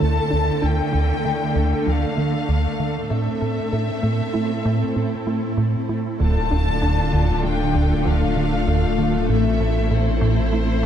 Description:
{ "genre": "cinematic, hybrid orchestral and electronic film score", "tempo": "97 BPM", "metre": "5/4", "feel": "straight", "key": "D minor", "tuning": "A4 = 444 Hz", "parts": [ { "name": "rich symphonic violin section", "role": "melody", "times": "0.0-10.9 s", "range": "C5 to A5", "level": "-28 LUFS", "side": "left 5 dB", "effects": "none" }, { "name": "rich symphonic viola section", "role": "accompaniment", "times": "0.0-10.9 s", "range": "A3 to A4", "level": "-29 LUFS", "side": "equal", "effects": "none" }, { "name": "swarming drone", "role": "sustained chords", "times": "0.0-10.9 s", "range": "A3 to A4", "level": "-27 LUFS", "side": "left 3 dB", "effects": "built-in reverb" }, { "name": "analog pluck", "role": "arpeggios", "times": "0.0-10.9 s", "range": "D3 to A4", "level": "-30 LUFS", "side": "right 1 dB", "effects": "none" }, { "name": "round analog bass", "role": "riff", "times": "0.0-10.7 s", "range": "D2 to A3", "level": "-22 LUFS", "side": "right 1 dB", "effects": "none" }, { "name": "rich symphonic cello section", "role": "bass", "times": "0.0-10.9 s", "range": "A2 to D3", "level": "-27 LUFS", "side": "right 3 dB", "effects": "none" }, { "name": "rich symphonic violin section", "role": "second line", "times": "6.2-10.9 s", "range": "E4 to A4", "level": "-29 LUFS", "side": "left 4 dB", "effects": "none" }, { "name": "saturated sub bass", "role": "bass", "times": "6.2-10.9 s", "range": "D1 to A1", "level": "-24 LUFS", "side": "equal", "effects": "none" } ], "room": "moderate scoring stage reverb, RT60 1.9 s", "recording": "dark, warm production", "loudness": "-18 LUFS", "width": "side -9 dB against mid", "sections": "0.0-6.2 A section; 6.2-10.9 A section", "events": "none", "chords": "0.0 Dm; 3.1 Am; 6.2 Dm; 9.3 Am" }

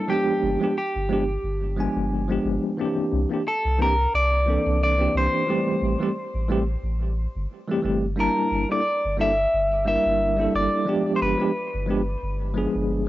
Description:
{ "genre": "sunset chillout", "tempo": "89 BPM", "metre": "4/4", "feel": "swing 56% on 16ths", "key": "unclear", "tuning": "A4 = 440 Hz", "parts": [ { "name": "clean electric guitar", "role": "melody", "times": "0.0-13.1 s", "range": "G4 to E5", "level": "-24 LUFS", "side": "equal", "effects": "vintage 12-bit sampler grit, cassette tape, plate reverb, tape echo" }, { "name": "bell-like tine electric piano", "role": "accompaniment", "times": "0.0-13.1 s", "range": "E3 to A5", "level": "-25 LUFS", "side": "equal", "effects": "fast stereo tremolo, auto-pan, cassette tape, tape echo" }, { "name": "warm sub bass", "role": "bass", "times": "0.4-13.1 s", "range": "G1 to C2", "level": "-26 LUFS", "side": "equal", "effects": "none" } ], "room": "moderate booth ambience, RT60 0.2 s", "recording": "home recording on cassette, nothing above 7.8 kHz", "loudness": "-21 LUFS", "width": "side -15 dB against mid", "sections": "0.0-13.1 A section", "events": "none", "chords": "0.1 G7b9; 2.8 C9; 5.5 Am7; 8.2 Gm69; 10.9 G7b9" }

